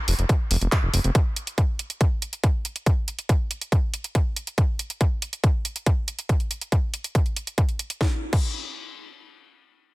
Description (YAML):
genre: psychedelic trance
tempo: 140 BPM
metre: 4/4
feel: straight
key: unclear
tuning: A4 = 440 Hz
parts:
  - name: fat analog bass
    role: bass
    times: 0.1-1.1 s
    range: F1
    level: -21 LUFS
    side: equal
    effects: none
  - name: techno drum kit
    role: drums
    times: 0.1-8.5 s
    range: crash cymbal, handclaps, hi-hat, snare drum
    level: -30 LUFS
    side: right 1 dB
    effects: overdrive
  - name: electronic kick drum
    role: drums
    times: 0.3-8.5 s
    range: none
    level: -21 LUFS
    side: equal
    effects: distortion, overdrive
room: little or no reverb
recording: dense, heavily limited modern master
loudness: -22 LUFS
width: side -21 dB against mid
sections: 0.0-8.0 A section; 8.0-9.9 B section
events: none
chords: none